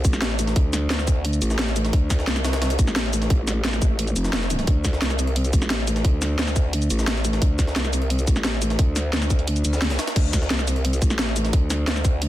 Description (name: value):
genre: dark technical drum and bass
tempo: 175 BPM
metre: 4/4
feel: straight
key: D minor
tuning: A4 = 440 Hz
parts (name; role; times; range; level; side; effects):
- growl bass; bass; 0.0-12.3 s; F1 to D2; -23 LUFS; equal; chorus, overdrive, sidechain pumping
- drum and bass drum kit; drums; 0.0-12.3 s; cabasa, crash cymbal, hi-hat, snare drum; -26 LUFS; equal; none
- electronic kick drum; drums; 0.0-12.1 s; none; -20 LUFS; equal; none
- jungle sampler-style drum kit; drums; 0.0-12.3 s; hi-hat, snare drum; -31 LUFS; equal; high-pass filter on hats, high-pass filter on snare, high-pass filter on room
room: digital ambience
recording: dense, heavily limited modern master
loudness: -19 LUFS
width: side -14 dB against mid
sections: 0.0-12.3 A section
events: none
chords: none